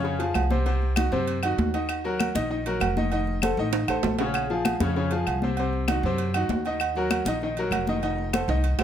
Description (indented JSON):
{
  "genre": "latin, salsa",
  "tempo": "196 BPM",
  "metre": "4/4",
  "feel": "straight",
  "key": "Bb minor",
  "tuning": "A4 = 440 Hz",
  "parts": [
    { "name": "clear concert grand piano", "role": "accompaniment", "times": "0.0-8.8 s", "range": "C3 to Eb5", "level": "-27 LUFS", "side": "left 2 dB", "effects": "none" },
    { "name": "upright bass", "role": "bass", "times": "0.0-8.8 s", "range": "F1 to Gb2", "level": "-28 LUFS", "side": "equal", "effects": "none" },
    { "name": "congas", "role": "percussion", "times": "0.0-8.8 s", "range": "none", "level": "-31 LUFS", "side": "left 3 dB", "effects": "none" },
    { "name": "agogo bells and timbales", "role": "percussion", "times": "0.2-8.8 s", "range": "none", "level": "-30 LUFS", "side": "right 8 dB", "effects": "none" },
    { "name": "claves", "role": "percussion", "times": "0.3-8.8 s", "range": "none", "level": "-34 LUFS", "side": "left 6 dB", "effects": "none" }
  ],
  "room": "moderate studio reverb, RT60 0.8 s",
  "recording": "none",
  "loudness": "-23 LUFS",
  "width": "side -9 dB against mid",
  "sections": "0.0-8.8 A section",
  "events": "drum fill 3.7-4.3, 8.5-8.8",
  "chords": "0.0 Bbm7 (rootless); 0.7 Cdim; 1.9 Ebm; 3.1 F7; 4.3 Bbm7; 5.6 Cdim; 6.8 Ebm; 8.0 F7",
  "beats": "0.04 0.35 | 0.66 0.97 1.27 1.58 | 1.89 2.19 2.50 2.81 | 3.12 3.42 3.73 4.04 | 4.34 4.65 4.96 5.26 | 5.57 5.88 6.18 6.49 | 6.80 7.10 7.41 7.72 | 8.03 8.33 8.64"
}